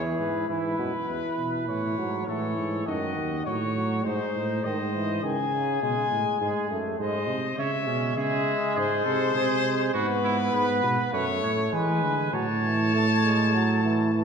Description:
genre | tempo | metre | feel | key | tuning
classical, imitative canzona for brass ensemble | 101 BPM | 4/4 | straight | A major from 9.9 s | A4 = 440 Hz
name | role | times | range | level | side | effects
clear trumpet | melody | 0.0-14.2 s | B4 to A5 | -30 LUFS | left 7 dB | none
warm trumpet | second line | 0.0-14.2 s | C#4 to C#5 | -32 LUFS | right 3 dB | none
clear trombone | accompaniment | 0.0-14.2 s | B2 to B3 | -29 LUFS | right 1 dB | none
warm tuba | bass | 0.0-14.2 s | D#2 to E3 | -28 LUFS | right 2 dB | none
room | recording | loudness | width
wet scoring stage reverb, RT60 1.5 s | none | -23 LUFS | side -6 dB against mid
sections
0.5-14.2 A section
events
none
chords
0.5 E; 1.7 A; 2.9 D#dim; 4.1 G#; 5.2 C#5; 6.4 G#; 7.6 C#m; 8.8 G#; 9.9 E/G# (rootless); 11.1 F#m; 11.7 E; 12.3 A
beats
| 0.50 1.09 1.69 2.28 | 2.87 3.46 4.05 4.64 | 5.24 5.82 6.41 7.00 | 7.59 8.17 8.76 9.36 | 9.95 10.54 11.13 11.72 | 12.33 12.94 13.54 14.14

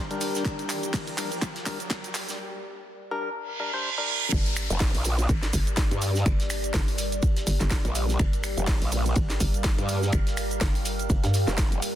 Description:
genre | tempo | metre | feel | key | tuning
bass house | 124 BPM | 4/4 | swing 57% on 16ths | G minor | A4 = 440 Hz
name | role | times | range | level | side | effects
deep dark ambient pad | sustained chords | 0.0-12.0 s | G3 to F5 | -34 LUFS | equal | chorus, built-in reverb, sidechain pumping
percussive organ stab | stabs | 0.0-4.3 s | G3 to C5 | -33 LUFS | left 4 dB | chorus, sidechain pumping, dub echo
riser, reverse cymbal and downlifter | sound effects | 0.1-8.2 s | none | -33 LUFS | right 4 dB | none
dark chamber string section | texture | 0.0-2.4 s | D4 to G5 | -42 LUFS | left 2 dB | sidechain pumping
house drum kit | drums | 0.1-11.9 s | crash cymbal, finger snaps, handclaps, hi-hat, shaker, snare drum | -32 LUFS | right 1 dB | soft clipping on snare
cloth-damped thuddy drum kit | drums | 0.2-12.0 s | hi-hat, ride cymbal, snare drum | -41 LUFS | left 1 dB | none
electronic kick drum | drums | 0.5-11.7 s | none | -25 LUFS | equal | none
hollow knocking FM bass | bass | 4.3-11.5 s | G1 to G2 | -28 LUFS | equal | overdrive, sidechain pumping
growl bass | bass | 4.7-11.8 s | F1 to G2 | -25 LUFS | equal | chorus, tube saturation, sidechain pumping
room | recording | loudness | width
light reverb, digital ambience | dense, heavily limited modern master, high-pass filter | -24 LUFS | side -12 dB against mid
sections
0.0-4.3 A section; 4.3-12.0 B section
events
build-up 0.0-4.3; drum fill 0.0-2.4; filter sweep 0.0-4.3; riser 0.1-2.4; reverse cymbal 3.5-4.3; drop 4.3-12.0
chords
0.0 Gm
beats
| 0.45 0.94 1.42 1.90 | 2.39 2.87 3.36 3.84 | 4.32 4.81 5.29 5.78 | 6.26 6.74 7.23 7.71 | 8.20 8.68 9.16 9.65 | 10.13 10.61 11.10 11.58

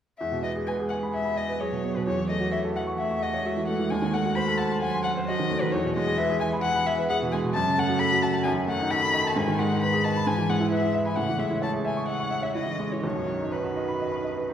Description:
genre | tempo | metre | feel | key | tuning
quick classical-period movement for piano trio | 131 BPM | 4/4 | rubato | E major | A4 = 439 Hz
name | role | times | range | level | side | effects
muted violin | melody | 0.2-14.5 s | B4 to B5 | -28 LUFS | left 3 dB | none
muted cello | second line | 0.2-14.5 s | C#3 to A3 | -32 LUFS | right 3 dB | none
clear baby grand piano | accompaniment | 0.2-14.5 s | B1 to C#6 | -26 LUFS | right 1 dB | none
room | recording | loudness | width
wet scoring stage reverb, RT60 1.8 s | recorded in a church or concert hall | -23 LUFS | side -9 dB against mid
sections
0.2-14.5 A section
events
none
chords
0.2 E; 2.1 F#m7/E; 3.9 D#dim7; 5.7 E; 7.5 F#m; 8.5 D#dim/F#; 9.4 G#m; 10.3 E/G#; 11.2 Amaj7; 13.0 B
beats
| 0.21 0.68 1.14 1.60 | 2.07 2.52 2.98 3.44 | 3.90 4.36 4.81 5.27 | 5.73 6.18 6.63 7.09 | 7.54 8.00 8.45 8.91 | 9.37 9.82 10.27 10.72 | 11.18 11.63 12.09 12.56 | 13.04 13.52 14.01 14.49

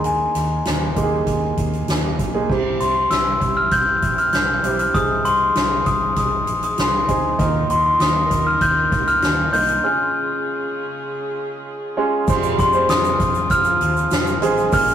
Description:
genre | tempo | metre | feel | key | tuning
piano-driven pop | 98 BPM | 4/4 | straight | F minor | A4 = 440 Hz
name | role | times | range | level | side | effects
glockenspiel with rubber mallets | melody | 0.0-14.9 s | Ab5 to G6 | -19 LUFS | left 2 dB | none
warm grand piano | accompaniment | 0.0-14.9 s | Bb2 to C5 | -24 LUFS | right 3 dB | none
vintage muted fingered electric bass | bass | 0.0-14.9 s | A1 to F2 | -26 LUFS | equal | none
soft-mallet drum kit | drums | 0.0-14.9 s | crash cymbal, hi-hat, kick drum, snare drum | -23 LUFS | right 1 dB | none
warm chamber string section | sustained chords | 2.5-14.9 s | Db3 to Bb4 | -31 LUFS | right 1 dB | none
warm French horn section | second line | 12.3-14.9 s | F3 to Ab4 | -27 LUFS | left 2 dB | none
egg shaker | percussion | 12.3-14.9 s | none | -38 LUFS | left 6 dB | none
room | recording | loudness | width
moderate studio reverb, RT60 0.6 s | rough rehearsal-room recording, warm saturation | -16 LUFS | side -9 dB against mid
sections
0.0-2.5 A section; 2.5-12.3 B section; 12.3-14.9 C section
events
break 9.8-12.3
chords
0.0 Ebsus4; 2.5 C; 4.9 Ab/C; 7.4 Ebsus2; 9.8 Db; 12.3 Fm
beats
| 0.04 0.66 1.27 1.88 | 2.50 3.11 3.72 4.33 | 4.94 5.56 6.17 6.78 | 7.39 8.00 8.61 9.23 | 9.84 10.45 11.06 11.67 | 12.28 12.89 13.50 14.11 | 14.72

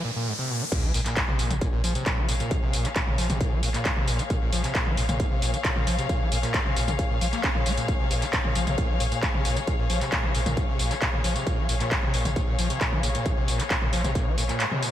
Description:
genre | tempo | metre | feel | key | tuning
driving peak-time techno | 134 BPM | 4/4 | straight | Bb minor | A4 = 438 Hz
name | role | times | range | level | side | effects
screaming distorted acid line | riff | 0.0-14.9 s | Ab2 to Db4 | -30 LUFS | equal | distortion, wide subtle chorus, sidechain pumping, ping-pong delay
riser and sub drop | sound effects | 0.0-2.5 s | none | -33 LUFS | equal | none
electronic kick drum | drums | 0.7-14.2 s | none | -27 LUFS | equal | distortion
techno drum kit | drums | 0.7-14.9 s | crash cymbal, handclaps, hi-hat, tambourine, toms | -28 LUFS | equal | sidechain pumping on hats, sidechain pumping on perc, sidechain pumping on cymbals, sidechain pumping on toms, gated reverb
warm symphonic string section | texture | 0.7-14.9 s | Ab4 to F5 | -32 LUFS | left 5 dB | sidechain pumping
saturated sub bass | bass | 0.8-14.5 s | Bb1 | -31 LUFS | equal | overdrive, sidechain pumping, low-pass filter
room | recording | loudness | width
light reverb, digital ambience | bright 1980s-style digital production | -23 LUFS | side -11 dB against mid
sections
0.7-14.9 A section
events
break 0.0-0.7; riser 0.0-0.7; drop 0.7-14.9; impact 0.7-2.5; kick drops out 14.6-14.9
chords
0.0 Bb5; 0.7 Bbm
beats
0.27 | 0.72 1.17 1.62 2.06 | 2.51 2.96 3.41 3.85 | 4.30 4.75 5.20 5.65 | 6.09 6.54 6.99 7.44 | 7.88 8.33 8.78 9.23 | 9.68 10.12 10.57 11.02 | 11.47 11.91 12.36 12.81 | 13.26 13.71 14.15 14.60

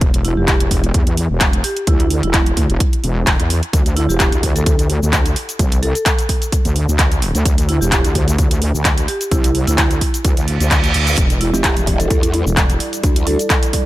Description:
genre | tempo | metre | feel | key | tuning
bass house | 129 BPM | 4/4 | swing 54% on 16ths | E phrygian | A4 = 443 Hz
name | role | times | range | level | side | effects
wobble bass | bass | 0.0-12.8 s | E1 to E2 | -17 LUFS | equal | chorus, overdrive, sidechain pumping
electronic kick drum | drums | 0.0-13.8 s | none | -16 LUFS | equal | overdrive
house drum kit | drums | 0.0-13.8 s | cabasa, handclaps, hi-hat | -20 LUFS | equal | overdrive
marimba with medium mallets | melody | 0.2-13.5 s | E4 to A4 | -23 LUFS | right 1 dB | none
reverse cymbal | sound effects | 10.4-11.2 s | none | -21 LUFS | right 4 dB | none
dark analog pad | sustained chords | 11.2-13.9 s | G3 to D5 | -26 LUFS | right 4 dB | chorus, sidechain pumping
growl bass | bass | 11.5-13.4 s | E1 to E2 | -18 LUFS | equal | chorus, tube saturation, sidechain pumping
room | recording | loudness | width
digital ambience | none | -13 LUFS | side -16 dB against mid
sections
0.0-13.9 A section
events
reverse cymbal 10.4-11.2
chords
0.0 Em7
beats
| 0.01 0.48 0.94 1.41 | 1.87 2.34 2.80 3.27 | 3.73 4.20 4.66 5.13 | 5.59 6.06 6.52 6.99 | 7.45 7.92 8.38 8.85 | 9.31 9.78 10.24 10.71 | 11.18 11.64 12.11 12.57 | 13.04 13.50

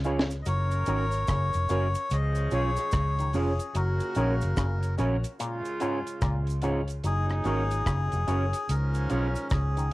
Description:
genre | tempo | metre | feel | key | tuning
roots reggae | 73 BPM | 4/4 | swing 63% on 16ths | F# major | A4 = 440 Hz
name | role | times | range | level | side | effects
warm horn section | second line | 0.0-9.9 s | G#2 to A#4 | -37 LUFS | right 2 dB | cassette tape, dub echo
auto-wah clav | arpeggios | 0.0-9.9 s | G#2 to F#3 | -37 LUFS | left 3 dB | cassette tape
clear baby grand piano | stabs | 0.0-9.3 s | C#4 to C#5 | -39 LUFS | left 4 dB | cassette tape
vintage muted fingered electric bass | bass | 0.0-9.9 s | E#1 to C#2 | -27 LUFS | equal | tube saturation
cabasa | percussion | 0.0-9.9 s | none | -48 LUFS | right 4 dB | none
mellow electric guitar | accompaniment | 0.1-9.4 s | C#4 to C#5 | -34 LUFS | right 3 dB | cassette tape, dub echo
deep reggae drum kit | drums | 0.2-9.9 s | hi-hat, kick drum, rim click, snare drum | -31 LUFS | equal | cassette tape
melodica | melody | 0.4-9.9 s | G#4 to D#5 | -32 LUFS | left 2 dB | cassette tape, dub echo
room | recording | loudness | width
light reverb | home recording on cassette | -25 LUFS | side -18 dB against mid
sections
0.0-9.9 A section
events
drum fill 0.0-0.5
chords
0.5 F#; 2.1 C#; 3.8 F#; 5.4 C#; 7.0 F#; 8.7 C#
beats
| 0.46 1.28 2.11 2.93 | 3.75 4.58 5.40 6.22 | 7.04 7.87 8.69 9.51

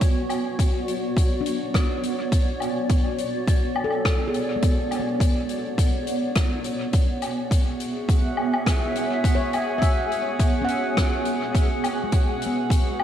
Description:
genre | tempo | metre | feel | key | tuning
ambient dub | 104 BPM | 4/4 | straight | B dorian | A4 = 439 Hz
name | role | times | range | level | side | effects
granular cloud pad | sustained chords | 0.0-13.0 s | B3 to G#5 | -26 LUFS | right 1 dB | built-in reverb
electronic kick drum | drums | 0.0-12.8 s | none | -20 LUFS | equal | overdrive, studio reverb
soft-mallet drum kit | drums | 0.0-13.0 s | hi-hat, rim click, woodblock | -31 LUFS | left 2 dB | studio reverb, dub echo
handpan | arpeggios | 1.4-13.0 s | G#3 to F#5 | -31 LUFS | left 3 dB | dub echo
drifting glass-harmonics texture | texture | 7.6-13.0 s | F#4 to F#5 | -33 LUFS | right 4 dB | chorus, built-in reverb
room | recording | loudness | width
moderate spring reverb, RT60 1.8 s, small room ambience | none | -21 LUFS | side -10 dB against mid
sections
0.0-13.0 A section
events
none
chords
0.0 Bm; 6.9 C#m/B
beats
| 0.01 0.59 1.16 1.74 | 2.32 2.90 3.47 4.05 | 4.63 5.20 5.78 6.36 | 6.93 7.51 8.09 8.66 | 9.24 9.82 10.39 10.97 | 11.55 12.13 12.70

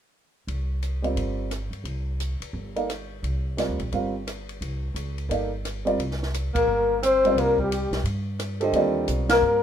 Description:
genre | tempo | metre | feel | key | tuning
modal jazz | 174 BPM | 4/4 | swing 62% on 8ths | C dorian | A4 = 445 Hz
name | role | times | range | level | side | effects
upright bass | bass | 0.5-9.6 s | G1 to G2 | -29 LUFS | equal | none
compact cocktail drum kit | drums | 0.5-9.4 s | hi-hat, kick drum, ride cymbal, rim click, snare drum | -35 LUFS | equal | none
warm grand piano | accompaniment | 1.0-9.6 s | D3 to F5 | -25 LUFS | right 2 dB | none
mellow alto saxophone | second line | 6.5-9.6 s | G3 to C4 | -25 LUFS | right 3 dB | none
trumpet with bucket mute | melody | 6.6-9.6 s | G4 to C5 | -21 LUFS | left 4 dB | none
room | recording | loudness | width
light reverb | minimal, uncompressed stereo recording | -23 LUFS | side -9 dB against mid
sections
0.5-6.0 A section; 6.0-9.6 B section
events
band accent 6.5, 9.2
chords
0.5 C7sus2; 6.0 Cm9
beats
| 0.48 0.82 1.17 1.51 | 1.85 2.20 2.54 2.89 | 3.23 3.57 3.92 4.26 | 4.61 4.95 5.29 5.64 | 5.98 6.33 6.67 7.01 | 7.36 7.70 8.05 8.39 | 8.73 9.08 9.42

